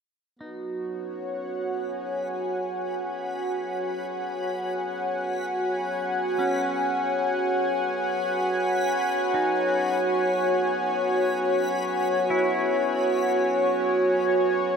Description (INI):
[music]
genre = ambient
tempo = free time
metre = none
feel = none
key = unclear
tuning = A4 = 437 Hz
[part]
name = warm analog pad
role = sustained chords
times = 0.4-14.8 s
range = F#4 to G#5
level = -23 LUFS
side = equal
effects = chorus
[part]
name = clean electric guitar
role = arpeggios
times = 0.4-14.8 s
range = C#4 to E4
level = -37 LUFS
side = left 1 dB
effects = spring reverb, tape echo
[part]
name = hand-pumped harmonium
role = drone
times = 0.4-14.8 s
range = B3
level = -40 LUFS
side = left 1 dB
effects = stereo widening
[part]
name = backwards swelling texture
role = texture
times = 1.8-14.8 s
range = B5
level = -42 LUFS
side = equal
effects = built-in reverb
[sound]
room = wet lush hall reverb, RT60 2.7 s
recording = none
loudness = -23 LUFS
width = side -6 dB against mid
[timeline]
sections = 0.4-14.8 A section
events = fade-in on clean electric guitar 0.4-14.8; fade-in on harmonium 0.4-14.8; fade-in on synth texture 0.4-14.8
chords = 0.4 F#sus4